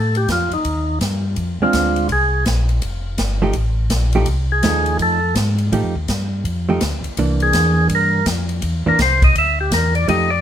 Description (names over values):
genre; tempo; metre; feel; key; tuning
soul jazz organ trio; 166 BPM; 4/4; swing 63% on 8ths; F mixolydian; A4 = 440 Hz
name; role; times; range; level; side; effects
percussive tonewheel organ; melody; 0.0-10.4 s; Eb4 to E5; -18 LUFS; left 1 dB; slow rotary speaker
mellow tonewheel organ; bass; 0.0-10.4 s; F1 to A2; -19 LUFS; equal; slow rotary speaker
swinging big-band drum kit; drums; 0.1-10.2 s; hi-hat, kick drum, ride cymbal, snare drum; -23 LUFS; equal; none
hollow-body jazz guitar; accompaniment; 1.6-10.3 s; E3 to G4; -20 LUFS; right 3 dB; none
room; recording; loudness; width
moderate studio reverb, RT60 0.8 s; minimal, uncompressed stereo recording; -15 LUFS; side -10 dB against mid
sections
0.0-10.4 A section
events
tonewheel organ solo 0.0-10.4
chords
0.0 F9; 1.4 Bb9; 2.8 F9; 7.2 C9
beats
0.29 0.65 1.01 | 1.37 1.74 2.10 2.46 | 2.83 3.19 3.55 3.91 | 4.28 4.64 5.00 5.36 | 5.72 6.09 6.45 6.81 | 7.17 7.54 7.90 8.26 | 8.62 8.99 9.35 9.71 | 10.07